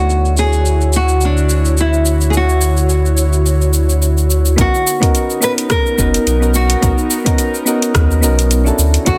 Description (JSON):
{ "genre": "sunset chillout", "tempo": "107 BPM", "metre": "4/4", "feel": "swing 56% on 16ths", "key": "unclear", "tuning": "A4 = 439 Hz", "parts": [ { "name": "nylon-string guitar", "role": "melody", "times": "0.0-9.2 s", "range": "D4 to B4", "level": "-20 LUFS", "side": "equal", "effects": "delay" }, { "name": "soft electric-piano-like synth keys", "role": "accompaniment", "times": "0.0-9.2 s", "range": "A3 to C#5", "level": "-23 LUFS", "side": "equal", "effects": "chorus, delay" }, { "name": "airy breathy pad", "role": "sustained chords", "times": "0.0-9.2 s", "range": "D3 to C#5", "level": "-23 LUFS", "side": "equal", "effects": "chorus" }, { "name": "warm sub bass", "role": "bass", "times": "0.0-9.2 s", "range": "F#1 to D#2", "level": "-16 LUFS", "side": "equal", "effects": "none" }, { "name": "deep house drum kit", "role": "drums", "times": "0.1-9.2 s", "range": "cabasa, hi-hat, rim click", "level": "-23 LUFS", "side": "equal", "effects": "low-pass filter on perc, low-pass filter on hats, low-pass filter on snare" }, { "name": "electronic kick drum", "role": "drums", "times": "4.6-9.2 s", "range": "none", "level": "-18 LUFS", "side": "equal", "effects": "none" } ], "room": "light reverb, digital ambience", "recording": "dense, heavily limited modern master", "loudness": "-14 LUFS", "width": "mono", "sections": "0.0-4.6 A section; 4.6-9.2 B section", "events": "none", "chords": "0.0 Dmaj9; 4.6 Bmaj9" }